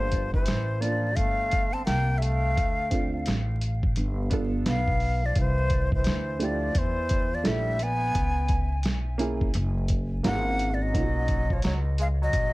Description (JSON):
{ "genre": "hip hop, jazz-hop", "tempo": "86 BPM", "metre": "4/4", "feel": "swing 62% on 16ths", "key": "unclear", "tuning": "A4 = 437 Hz", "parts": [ { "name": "breathy jazz flute", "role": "melody", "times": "0.0-12.5 s", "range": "C5 to A5", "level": "-30 LUFS", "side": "left 2 dB", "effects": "plate reverb, tape echo" }, { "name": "bright trombone", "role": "second line", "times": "0.0-12.5 s", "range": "E3 to C4", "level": "-36 LUFS", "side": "right 2 dB", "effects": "plate reverb" }, { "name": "dark upright piano", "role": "accompaniment", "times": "0.0-11.5 s", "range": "A3 to Bb4", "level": "-31 LUFS", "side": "right 3 dB", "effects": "plate reverb" }, { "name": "upright bass", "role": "bass", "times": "0.0-12.5 s", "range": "F#1 to E2", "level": "-27 LUFS", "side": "equal", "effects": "none" }, { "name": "lo-fi sampler-style drum kit", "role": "drums", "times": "0.1-12.5 s", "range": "hi-hat, kick drum, snare drum", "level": "-28 LUFS", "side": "equal", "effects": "none" } ], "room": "light reverb", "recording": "dark, warm production, vinyl crackle", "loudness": "-23 LUFS", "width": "side -20 dB against mid", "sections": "0.0-12.5 A section", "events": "none", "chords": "0.0 Gm9; 2.6 Dm7; 4.0 G7; 5.4 C69; 8.2 C#m7; 9.5 F#9; 10.9 Bmaj9", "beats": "0.48 1.18 1.87 | 2.57 3.27 3.97 4.66 | 5.36 6.06 6.76 7.46 | 8.15 8.85 9.55 10.25 | 10.94 11.64 12.34" }